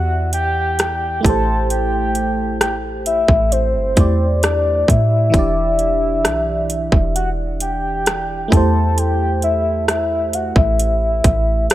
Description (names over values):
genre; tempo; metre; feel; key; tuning
contemporary R&B; 66 BPM; 4/4; straight; unclear; A4 = 440 Hz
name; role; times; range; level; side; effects
soft octave-layered synth lead; melody; 0.0-11.7 s; C5 to A5; -19 LUFS; left 1 dB; chorus, tremolo, ping-pong delay
FM electric piano; accompaniment; 0.0-11.7 s; E3 to D5; -23 LUFS; right 1 dB; chorus
soft 808-style bass; bass; 0.0-11.7 s; E1 to A2; -20 LUFS; equal; none
trap drum kit; drums; 0.3-11.7 s; hi-hat, kick drum, rim click; -16 LUFS; equal; overdrive
room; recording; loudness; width
moderate echo chamber reverb, RT60 2.3 s; none; -15 LUFS; side -14 dB against mid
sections
0.0-11.7 A section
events
none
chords
0.0 Em7; 1.2 Am7; 5.3 Em7; 8.5 Am7